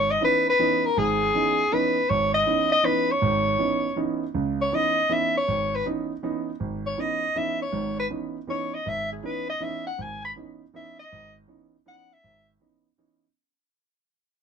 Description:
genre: jazz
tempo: 160 BPM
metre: 3/4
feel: swing 66% on 8ths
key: C# minor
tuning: A4 = 442 Hz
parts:
  - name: warm soprano saxophone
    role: melody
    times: 0.0-12.5 s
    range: G#4 to B5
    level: -23 LUFS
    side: left 2 dB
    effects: none
  - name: warm concert grand piano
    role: accompaniment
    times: 0.0-13.2 s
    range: G#1 to D#4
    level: -28 LUFS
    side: right 4 dB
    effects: none
room: light reverb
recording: close, detailed microphones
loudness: -22 LUFS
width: side -7 dB against mid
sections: 0.0-4.3 A section; 4.3-13.4 B section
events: fade-out 4.3-13.4; soprano saxophone solo 4.3-13.4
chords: 0.0 C#m9

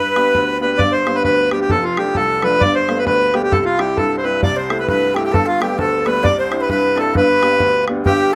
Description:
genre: celtic folk, Celtic polka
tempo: 132 BPM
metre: 2/4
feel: swing 60% on 8ths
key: G mixolydian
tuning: A4 = 440 Hz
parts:
  - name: accordion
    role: melody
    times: 0.0-8.3 s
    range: F4 to D5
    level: -18 LUFS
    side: equal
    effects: none
  - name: breathy jazz flute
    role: second line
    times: 0.0-0.6, 4.4-8.3 s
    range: F4 to D5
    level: -24 LUFS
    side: equal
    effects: none
  - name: bright upright piano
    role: accompaniment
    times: 0.0-8.3 s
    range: F1 to G4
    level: -23 LUFS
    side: equal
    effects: none
  - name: bodhran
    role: percussion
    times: 0.2-8.2 s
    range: none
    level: -24 LUFS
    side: equal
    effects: none
room: moderate studio reverb, RT60 0.6 s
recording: rough home demo mix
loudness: -16 LUFS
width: mono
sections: 0.8-8.1 A section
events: none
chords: 0.0 G; 1.7 F6; 2.6 Gadd9; 3.5 C; 4.4 C6; 5.3 Gadd9; 6.2 Cadd9; 7.2 G

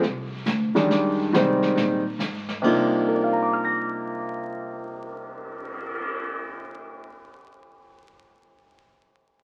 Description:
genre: jazz piano trio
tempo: 138 BPM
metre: 4/4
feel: swing 66% on 8ths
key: C minor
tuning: A4 = 436 Hz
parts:
  - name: upright bass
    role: bass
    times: 0.0-7.0 s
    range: C2 to C3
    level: -35 LUFS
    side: equal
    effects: none
  - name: vintage brush drum kit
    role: drums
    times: 0.0-6.0 s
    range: brushed snare drum, crash cymbal, cymbal swell, hi-hat, kick drum, snare drum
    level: -34 LUFS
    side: equal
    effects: none
  - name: clear grand piano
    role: melody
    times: 0.7-7.9 s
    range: C3 to Bb6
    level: -25 LUFS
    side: equal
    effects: none
room: moderate large studio reverb, RT60 1.4 s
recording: very old 78 rpm record, vinyl crackle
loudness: -24 LUFS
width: mono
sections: 0.0-2.6 A section; 2.6-6.1 B section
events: none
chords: 0.0 D7(no3); 0.9 Fm7; 2.6 Cm11

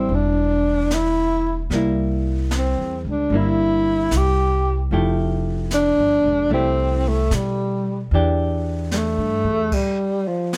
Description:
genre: jazz ballad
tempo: 75 BPM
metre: 4/4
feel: swing 67% on 8ths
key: F major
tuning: A4 = 440 Hz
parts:
  - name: breathy tenor saxophone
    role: melody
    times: 0.0-10.5 s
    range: F3 to G4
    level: -22 LUFS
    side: equal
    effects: none
  - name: hollow-body jazz guitar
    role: accompaniment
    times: 0.0-9.7 s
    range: E3 to G4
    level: -27 LUFS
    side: equal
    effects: none
  - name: upright bass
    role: bass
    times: 0.0-9.7 s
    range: E1 to B2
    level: -25 LUFS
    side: equal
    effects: none
  - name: jazz brush drum kit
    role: drums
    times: 0.1-10.6 s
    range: brushed snare drum, crash cymbal, hi-hat, kick drum, snare drum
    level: -32 LUFS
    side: equal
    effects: none
room: moderate studio reverb, RT60 0.6 s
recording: none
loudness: -20 LUFS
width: mono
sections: 0.0-10.6 A section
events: none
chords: 0.0 Am7 (rootless); 1.7 C7; 4.9 Fmaj9; 8.1 Em7; 9.7 N.C.

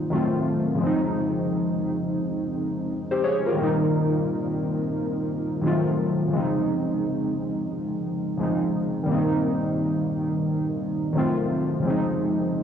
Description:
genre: hip hop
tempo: 87 BPM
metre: 4/4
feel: swing 62% on 16ths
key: unclear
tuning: A4 = 438 Hz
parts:
  - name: warbly lo-fi synth keys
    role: solo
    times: 0.0-12.6 s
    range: Db3 to Db5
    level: -22 LUFS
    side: equal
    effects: chorus, cassette tape, low-pass filter
room: light reverb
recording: home recording on cassette, studio reverb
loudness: -22 LUFS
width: side -8 dB against mid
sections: 0.0-12.6 A section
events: none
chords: 0.1 F7b9; 0.8 Dbmaj9#11; 3.6 Cm7; 5.6 F7b9; 6.3 Dbmaj9; 9.1 Cm7; 11.2 F7b9; 11.8 Dbmaj9

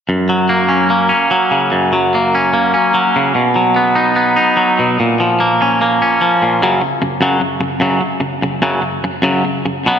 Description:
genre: rock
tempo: 147 BPM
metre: 4/4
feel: straight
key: F# major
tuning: A4 = 439 Hz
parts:
  - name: twangy electric guitar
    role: solo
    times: 0.1-10.0 s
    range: F#2 to D#4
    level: -12 LUFS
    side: equal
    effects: ping-pong delay
room: wet plate reverb, RT60 2.8 s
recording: dreamy mix soaked in reverb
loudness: -12 LUFS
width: side -8 dB against mid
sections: 0.1-6.6 A section; 6.6-10.0 B section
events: none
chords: 0.1 F#; 3.4 B; 5.0 A#m; 6.6 F#5

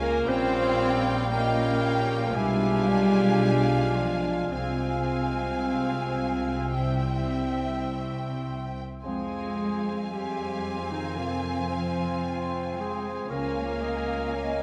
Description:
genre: classical, slow romantic movement for symphony orchestra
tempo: 52-58 BPM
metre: 4/4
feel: rubato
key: F minor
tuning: A4 = 440 Hz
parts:
  - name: warm studio violin section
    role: melody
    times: 0.0-14.6 s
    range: G5 to Ab5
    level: -38 LUFS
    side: equal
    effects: none
  - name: rich studio violin section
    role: second line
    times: 0.0-14.6 s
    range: E5 to F5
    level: -42 LUFS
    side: equal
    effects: none
  - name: warm clarinet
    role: second line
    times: 0.0-14.6 s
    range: C4 to C5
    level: -35 LUFS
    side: equal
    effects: none
  - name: mellow bassoon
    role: accompaniment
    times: 0.0-14.6 s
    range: G3 to F4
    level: -39 LUFS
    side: equal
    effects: none
  - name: rich studio viola section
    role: accompaniment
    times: 0.0-14.6 s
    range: C4 to D4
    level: -37 LUFS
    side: equal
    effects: none
  - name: mellow French horn section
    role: sustained chords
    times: 0.0-13.7 s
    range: F3 to F4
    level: -36 LUFS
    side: equal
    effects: none
  - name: concert harp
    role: arpeggios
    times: 0.0-14.6 s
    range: F2 to E5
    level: -41 LUFS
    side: equal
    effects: none
  - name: rich studio double bass section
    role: bass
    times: 0.0-14.6 s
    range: Bb1 to F2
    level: -34 LUFS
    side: equal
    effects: none
  - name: warm studio cello section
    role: bass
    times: 0.0-14.6 s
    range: C3 to C4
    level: -33 LUFS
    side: equal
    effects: none
  - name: mellow hollow concert flute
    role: second line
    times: 0.3-14.6 s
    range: F5 to Ab5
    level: -41 LUFS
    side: equal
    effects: none
  - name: warm cor anglais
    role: second line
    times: 0.3-14.6 s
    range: C5 to F5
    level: -41 LUFS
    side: equal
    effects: none
room: wet scoring stage reverb, RT60 2.0 s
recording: none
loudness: -27 LUFS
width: mono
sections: 0.0-14.6 A section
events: none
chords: 0.3 Gm7b5/Bb; 2.4 Bdim7; 4.5 Fm/C; 6.8 C; 9.0 Fm; 13.3 Db

